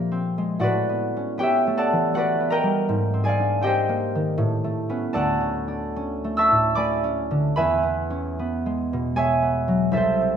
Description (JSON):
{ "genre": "classical", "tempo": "68-83 BPM", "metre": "3/4", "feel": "rubato", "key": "unclear", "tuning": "A4 = 441 Hz", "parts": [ { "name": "concert harp", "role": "accompaniment", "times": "0.0-10.4 s", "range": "C2 to E6", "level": "-20 LUFS", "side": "equal", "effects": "none" } ], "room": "wet recital hall reverb, RT60 1.3 s", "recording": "none", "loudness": "-20 LUFS", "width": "side -8 dB against mid", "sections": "0.0-10.4 A section", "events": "none", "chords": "0.0 Bb9; 0.6 A13; 2.9 G#add9; 4.4 A9; 5.2 Dmaj7; 7.6 Eadd9", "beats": "| 0.64 1.42 2.17 | 2.89 3.64 4.39 | 5.15 5.95 6.78 | 7.56 8.38 9.15 | 9.93" }